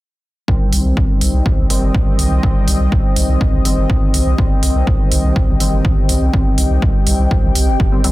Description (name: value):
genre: melodic techno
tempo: 123 BPM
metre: 4/4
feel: straight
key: C minor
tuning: A4 = 440 Hz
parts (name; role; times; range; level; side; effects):
- sweeping resonant pad; sustained chords; 0.9-8.1 s; C4 to G5; -24 LUFS; left 1 dB; chorus, sidechain pumping
- sync-sweep polysynth; stabs; 0.5-8.1 s; Eb3 to C4; -21 LUFS; left 1 dB; chorus, sidechain pumping, tape echo
- round analog bass; bass; 0.5-8.1 s; G1 to C2; -16 LUFS; equal; sidechain pumping
- electronic kick drum; drums; 0.5-7.9 s; none; -16 LUFS; equal; none
- electronic hi-hat; drums; 0.7-8.1 s; none; -22 LUFS; right 2 dB; none
room: little or no reverb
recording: dense, heavily limited modern master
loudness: -12 LUFS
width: side -18 dB against mid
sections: 0.5-8.1 A section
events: filter sweep on analog synth bass 0.5-8.1; filter sweep on analog polysynth 0.5-8.1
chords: 0.5 Cm